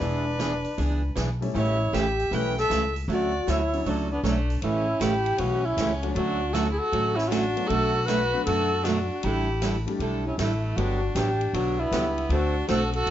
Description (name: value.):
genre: country, western swing.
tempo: 156 BPM.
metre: 4/4.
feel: swing 66% on 8ths.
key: D major.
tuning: A4 = 437 Hz.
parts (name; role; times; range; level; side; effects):
alto flute; melody; 0.0-13.1 s; D4 to B4; -27 LUFS; left 1 dB; plate reverb.
clear fiddle; second line; 0.0-13.1 s; A3 to G5; -33 LUFS; right 2 dB; none.
picked steel-string acoustic guitar; accompaniment; 0.0-13.1 s; B2 to A4; -29 LUFS; right 4 dB; none.
warm upright piano; accompaniment; 0.0-12.9 s; F#3 to A4; -34 LUFS; left 4 dB; none.
upright bass; bass; 0.0-13.1 s; E1 to F#2; -28 LUFS; equal; none.
swinging big-band drum kit; drums; 0.0-13.1 s; hi-hat, ride cymbal, snare drum; -38 LUFS; equal; none.
room: moderate studio reverb, RT60 0.7 s.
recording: nothing above 7.6 kHz.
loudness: -23 LUFS.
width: side -11 dB against mid.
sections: 0.0-4.6 A section; 4.6-13.1 B section.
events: none.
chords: 0.0 E7; 1.6 A7; 3.1 Dmaj9; 4.6 A7; 6.2 Dmaj7; 7.7 Bm7; 9.2 A7sus4; 10.8 Gmaj7; 12.3 D7.